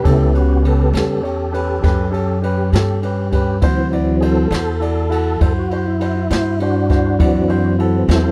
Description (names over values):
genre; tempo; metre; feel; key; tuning
slow blues; 67 BPM (dotted quarters); 12/8; straight; unclear; A4 = 440 Hz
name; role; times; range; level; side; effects
warm upright piano; accompaniment; 0.0-8.3 s; C#4 to D5; -24 LUFS; equal; none
tonewheel organ; sustained chords; 0.0-8.3 s; C#3 to A4; -22 LUFS; equal; slow rotary speaker, overdrive, chorus vibrato
upright bass; bass; 0.1-8.3 s; C#2 to G2; -20 LUFS; equal; none
jazz brush drum kit; drums; 0.1-8.2 s; kick drum, ride cymbal, snare drum; -22 LUFS; equal; none
room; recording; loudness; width
little or no reverb; dry, close 1970s-style studio recording; -17 LUFS; mono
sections
0.0-8.3 A section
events
tonewheel organ solo 0.0-8.3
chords
0.0 A7; 3.6 D7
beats
| 0.05 0.94 1.84 2.73 | 3.62 4.51 5.41 6.30 | 7.19 8.09